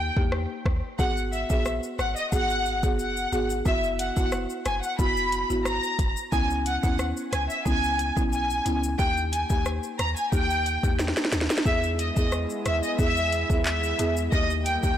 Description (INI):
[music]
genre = dancehall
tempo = 90 BPM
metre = 4/4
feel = straight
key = unclear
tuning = A4 = 440 Hz
[part]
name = warm studio violin section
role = melody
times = 0.0-15.0 s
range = D#5 to B5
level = -27 LUFS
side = left 1 dB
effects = tape echo
[part]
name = folk marimba with medium mallets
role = accompaniment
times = 0.0-15.0 s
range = A#3 to G#4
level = -31 LUFS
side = equal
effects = none
[part]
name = clean 808-style bass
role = bass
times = 0.0-15.0 s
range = F#1 to E2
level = -30 LUFS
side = equal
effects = none
[part]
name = afro-pop drum kit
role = drums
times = 0.2-15.0 s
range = handclaps, hi-hat, kick drum, rim click, shaker, snare drum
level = -27 LUFS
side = equal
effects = none
[part]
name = warm analog pad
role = sustained chords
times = 12.0-15.0 s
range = D#3 to G#4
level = -35 LUFS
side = right 1 dB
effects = chorus, sidechain pumping
[sound]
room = light reverb, digital ambience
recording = blown-out, overdriven recording, overdrive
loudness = -23 LUFS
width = side -10 dB against mid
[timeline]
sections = 0.0-11.7 A section; 11.7-15.0 B section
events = drum fill 11.0-11.7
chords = 0.0 D#; 1.0 G#m7; 3.7 F#7sus4; 6.3 C#m7; 9.0 D#; 11.7 E; 14.3 D#